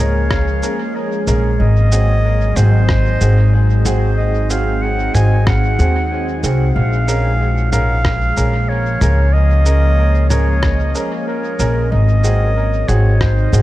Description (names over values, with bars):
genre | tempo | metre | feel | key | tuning
ambient dub | 93 BPM | 4/4 | swing 55% on 16ths | Bb minor | A4 = 440 Hz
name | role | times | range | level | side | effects
warm clarinet | melody | 0.0-13.6 s | Bb4 to Ab5 | -22 LUFS | equal | dub echo
warbly tape-like pad | sustained chords | 0.0-13.6 s | C3 to Ab4 | -23 LUFS | equal | chorus, built-in reverb, phaser
clear upright piano | stabs | 0.0-13.6 s | C4 to Bb4 | -25 LUFS | right 2 dB | dub echo
upright bass | bass | 0.0-13.6 s | Ab1 to Eb2 | -14 LUFS | equal | none
electronic kick drum | drums | 0.3-13.3 s | none | -19 LUFS | equal | small room reverb
lo-fi sampler-style drum kit | drums | 0.3-13.6 s | cabasa, rim click, toms | -24 LUFS | right 1 dB | small room reverb, dub echo
room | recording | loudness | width
light reverb, small room ambience | none | -12 LUFS | side -16 dB against mid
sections
0.0-13.6 A section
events
none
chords
0.0 Bbm7; 1.6 Ab7; 6.8 Bbm7; 11.9 Ab7